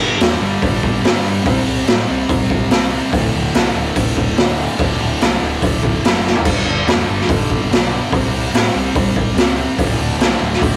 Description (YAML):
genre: garage rock duo or trio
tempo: 144 BPM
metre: 4/4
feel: straight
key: unclear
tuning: A4 = 440 Hz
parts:
  - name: thick fuzz guitar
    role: riff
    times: 0.0-10.8 s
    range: D2 to C4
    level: -22 LUFS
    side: equal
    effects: distortion
  - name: growling picked electric bass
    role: bass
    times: 0.0-10.8 s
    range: D1 to A2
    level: -25 LUFS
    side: equal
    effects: overdrive
  - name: raw garage drum kit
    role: drums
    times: 0.2-10.7 s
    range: crash cymbal, hi-hat, kick drum, snare drum, splash cymbal, toms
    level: -18 LUFS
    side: equal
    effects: none
room: light reverb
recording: rough rehearsal-room recording, warm saturation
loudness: -16 LUFS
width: mono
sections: 0.0-10.8 A section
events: drum fill 6.3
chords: 0.0 G5; 1.5 C5; 3.1 D5; 6.5 G; 8.1 C5; 9.8 D5